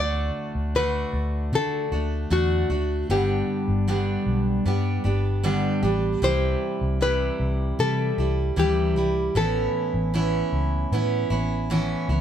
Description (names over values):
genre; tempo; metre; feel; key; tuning
acoustic pop; 77 BPM; 4/4; straight; D major; A4 = 440 Hz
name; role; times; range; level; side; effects
nylon-string guitar; melody; 0.0-12.1 s; F#4 to D5; -26 LUFS; left 3 dB; none
picked steel-string acoustic guitar; accompaniment; 0.0-12.2 s; G2 to G4; -26 LUFS; right 2 dB; none
vintage muted fingered electric bass; bass; 0.0-12.2 s; G1 to D3; -25 LUFS; equal; none
room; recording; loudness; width
moderate studio reverb, RT60 0.5 s; band playing live in one room; -21 LUFS; side -9 dB against mid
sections
0.0-12.2 A section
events
none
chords
0.0 D; 3.1 G; 6.2 C; 9.3 Aadd9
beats
0.75 1.53 2.31 | 3.09 3.88 4.66 5.44 | 6.22 7.00 7.79 8.57 | 9.35 10.13 10.91 11.69